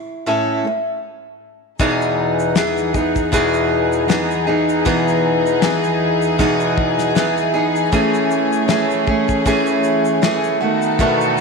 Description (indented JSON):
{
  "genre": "acoustic pop",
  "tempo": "78 BPM",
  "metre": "4/4",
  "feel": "swing 55% on 16ths",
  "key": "E major",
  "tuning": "A4 = 440 Hz",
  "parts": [
    { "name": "fingerpicked steel-string acoustic guitar", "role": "accompaniment", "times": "0.0-11.4 s", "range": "E2 to A4", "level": "-16 LUFS", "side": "equal", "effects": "none" },
    { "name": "warm chamber string section", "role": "sustained chords", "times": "1.8-11.4 s", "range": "E2 to A4", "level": "-21 LUFS", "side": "left 1 dB", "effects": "none" },
    { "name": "cloth-damped thuddy drum kit", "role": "drums", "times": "1.8-11.4 s", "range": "kick drum, shaker, snare drum", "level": "-22 LUFS", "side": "left 3 dB", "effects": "none" }
  ],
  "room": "moderate echo chamber reverb, RT60 2.0 s",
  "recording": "1960s-style stereo",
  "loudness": "-15 LUFS",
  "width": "side -4 dB against mid",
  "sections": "0.0-1.8 A section; 1.8-11.4 B section",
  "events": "none",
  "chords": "0.0 A; 1.8 Emaj7; 7.9 Amaj7/E; 10.6 B7"
}